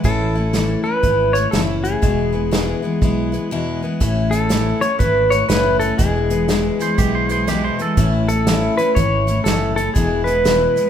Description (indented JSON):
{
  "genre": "honky-tonk and classic country",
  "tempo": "121 BPM",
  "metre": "4/4",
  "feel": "swing 63% on 8ths",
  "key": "A major",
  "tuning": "A4 = 440 Hz",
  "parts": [
    { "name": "picked steel-string acoustic guitar", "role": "accompaniment", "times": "0.0-10.9 s", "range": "E2 to E4", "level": "-21 LUFS", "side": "left 2 dB", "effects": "none" },
    { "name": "fingered electric bass", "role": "bass", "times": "0.0-10.7 s", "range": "E1 to B1", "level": "-22 LUFS", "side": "equal", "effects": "none" },
    { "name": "unplugged drum kit", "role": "drums", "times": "0.0-10.9 s", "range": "hi-hat, kick drum, snare drum", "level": "-21 LUFS", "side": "right 1 dB", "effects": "none" },
    { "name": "pedal steel guitar", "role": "melody", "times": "0.1-10.9 s", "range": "G#4 to C#5", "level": "-19 LUFS", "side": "left 1 dB", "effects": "none" },
    { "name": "twangy electric guitar", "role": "second line", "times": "6.8-8.1 s", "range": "G4 to C5", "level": "-23 LUFS", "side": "right 6 dB", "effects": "none" }
  ],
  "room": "moderate large studio reverb, RT60 1.1 s",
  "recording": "minimal, uncompressed stereo recording",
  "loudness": "-15 LUFS",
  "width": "side -9 dB against mid",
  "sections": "0.0-4.0 A section; 4.0-10.9 B section",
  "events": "break 3.5-4.0",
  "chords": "0.0 A; 2.0 E; 4.0 A; 6.0 E; 8.0 A; 10.0 E",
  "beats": "| 0.04 0.54 1.03 1.53 | 2.02 2.52 3.02 3.51 | 4.01 4.50 5.00 5.50 | 5.99 6.49 6.98 7.48 | 7.98 8.47 8.97 9.46 | 9.96 10.46"
}